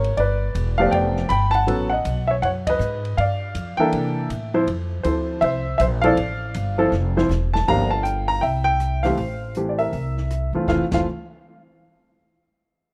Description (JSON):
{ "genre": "jazz piano trio", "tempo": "160 BPM", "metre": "4/4", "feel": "swing 64% on 8ths", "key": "F major", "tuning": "A4 = 440 Hz", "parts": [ { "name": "warm baby grand piano", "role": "melody", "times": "0.0-11.1 s", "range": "E3 to B5", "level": "-23 LUFS", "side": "equal", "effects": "none" }, { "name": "upright bass", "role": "bass", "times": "0.0-11.0 s", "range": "E1 to C3", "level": "-26 LUFS", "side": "equal", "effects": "none" }, { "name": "open jazz drum kit", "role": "drums", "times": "0.0-11.0 s", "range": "crash cymbal, hi-hat, kick drum, ride cymbal, rim click, snare drum", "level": "-37 LUFS", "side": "equal", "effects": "none" } ], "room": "small room ambience", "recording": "rough home demo mix", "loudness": "-22 LUFS", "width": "mono", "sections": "0.0-7.7 A section; 7.7-10.7 B section; 10.7-12.2 C section", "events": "band accent 2.6; drum fill 6.9-7.7", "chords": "0.2 G9; 1.7 A69; 3.2 G7(no3); 3.9 C13; 4.7 Fmaj7; 7.7 Gm7; 8.4 C; 9.2 Am7; 9.9 C7; 10.7 N.C." }